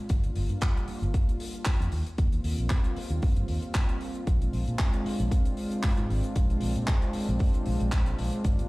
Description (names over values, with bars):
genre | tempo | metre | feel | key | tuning
nu-disco, nu disco | 115 BPM | 4/4 | swing 54% on 16ths | Bb mixolydian | A4 = 440 Hz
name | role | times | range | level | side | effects
warm analog pad | accompaniment | 0.0-8.7 s | G3 to F4 | -34 LUFS | equal | chorus, sidechain pumping, analog delay
fingered electric bass with an envelope filter | bass | 0.1-8.6 s | G1 to Bb2 | -29 LUFS | equal | none
damped 70s drum kit | drums | 0.1-8.7 s | handclaps, hi-hat | -38 LUFS | equal | small room ambience
electronic kick drum | drums | 0.1-8.6 s | none | -25 LUFS | equal | small room ambience
room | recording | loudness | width
small room ambience | played on a big sound system in a bare room, stone room reverb | -25 LUFS | side -22 dB against mid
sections
0.0-8.7 A section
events
none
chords
0.1 Gm7; 1.9 Eb69; 4.3 Bb7